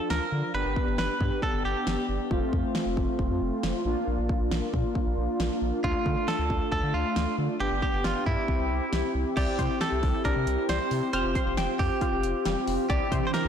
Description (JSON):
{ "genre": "synth-pop", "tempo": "136 BPM", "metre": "4/4", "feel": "straight", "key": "F major", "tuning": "A4 = 440 Hz", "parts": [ { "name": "direct-recorded clean electric guitar", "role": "melody", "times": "0.0-2.1, 5.8-13.5 s", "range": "E4 to C5", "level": "-30 LUFS", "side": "right 3 dB", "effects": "harmonic tremolo, ping-pong delay" }, { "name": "mellow synth brass", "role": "accompaniment", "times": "0.0-13.5 s", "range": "F3 to G4", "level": "-29 LUFS", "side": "left 1 dB", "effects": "chorus" }, { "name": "round analog bass", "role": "bass", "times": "0.1-13.5 s", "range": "F1 to D3", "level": "-31 LUFS", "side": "equal", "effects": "tube saturation" }, { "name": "pop drum kit", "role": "drums", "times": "0.1-13.4 s", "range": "crash cymbal, hi-hat, kick drum, snare drum", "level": "-30 LUFS", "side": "equal", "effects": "none" }, { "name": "analog pluck", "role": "arpeggios", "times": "9.4-13.5 s", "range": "G3 to F6", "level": "-35 LUFS", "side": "left 3 dB", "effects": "chorus, phaser, ping-pong delay" }, { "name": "string machine, cellos", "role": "sustained chords", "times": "12.9-13.5 s", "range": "E3 to D4", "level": "-33 LUFS", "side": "right 8 dB", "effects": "phaser, ensemble chorus" } ], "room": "moderate lush hall reverb, RT60 1.7 s, digital ambience", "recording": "blown-out, overdriven recording, overdrive", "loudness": "-25 LUFS", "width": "side -8 dB against mid", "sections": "0.0-9.4 A section; 9.4-13.5 B section", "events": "none", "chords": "0.0 Dm; 0.5 G; 2.3 F; 3.9 Bb; 5.8 Dm; 7.6 G; 8.5 C; 9.4 Cadd9; 11.1 Fsus2; 12.9 Cadd9" }